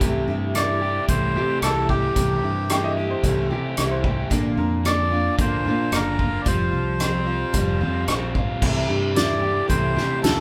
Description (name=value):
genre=folk rock and heartland rock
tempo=112 BPM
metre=4/4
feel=straight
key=C mixolydian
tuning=A4 = 440 Hz
part: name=picked steel-string acoustic guitar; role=accompaniment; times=0.0-10.4 s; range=Bb2 to G4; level=-29 LUFS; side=equal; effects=none
part: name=raw garage guitar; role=riff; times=0.0-10.4 s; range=Bb2 to G4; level=-31 LUFS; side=equal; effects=overdrive
part: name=fingered electric bass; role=bass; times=0.0-10.4 s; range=F1 to C3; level=-28 LUFS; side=equal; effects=none
part: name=natural country drum kit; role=drums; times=0.0-10.4 s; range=crash cymbal, hi-hat, kick drum, rim click, snare drum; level=-27 LUFS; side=equal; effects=none
part: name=melodica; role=melody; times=0.6-10.4 s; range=G4 to D5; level=-28 LUFS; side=equal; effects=none
part: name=clear upright piano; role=second line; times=2.7-4.8 s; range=G4 to G5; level=-34 LUFS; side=equal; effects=none
room=moderate large studio reverb, RT60 1.3 s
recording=band playing live in one room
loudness=-22 LUFS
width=mono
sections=0.0-8.6 A section; 8.6-10.4 A section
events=none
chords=0.0 C6; 4.3 Bb; 6.5 Fsus2; 8.6 C6